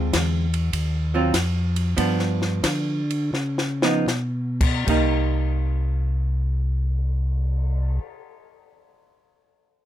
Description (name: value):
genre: soul jazz organ trio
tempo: 72-102 BPM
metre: 4/4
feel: swing 67% on 8ths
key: C minor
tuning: A4 = 440 Hz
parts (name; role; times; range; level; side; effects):
- archtop guitar, miked and amplified; accompaniment; 0.0-8.1 s; D3 to F4; -24 LUFS; right 3 dB; none
- mellow tonewheel organ; bass; 0.0-8.0 s; C2 to D3; -22 LUFS; equal; slow rotary speaker
- compact cocktail drum kit; drums; 0.1-8.0 s; crash cymbal, cymbal swell, hi-hat, kick drum, ride cymbal, snare drum; -26 LUFS; left 1 dB; none
room: little or no reverb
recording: close, detailed microphones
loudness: -20 LUFS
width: side -12 dB against mid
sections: 0.0-4.9 A section; 4.9-8.2 B section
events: slowing down 0.0-4.9; drum fill 3.3-4.1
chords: 0.0 Dm7b5; 0.7 Ebm69; 2.0 G7; 3.3 Db9; 4.9 Cm7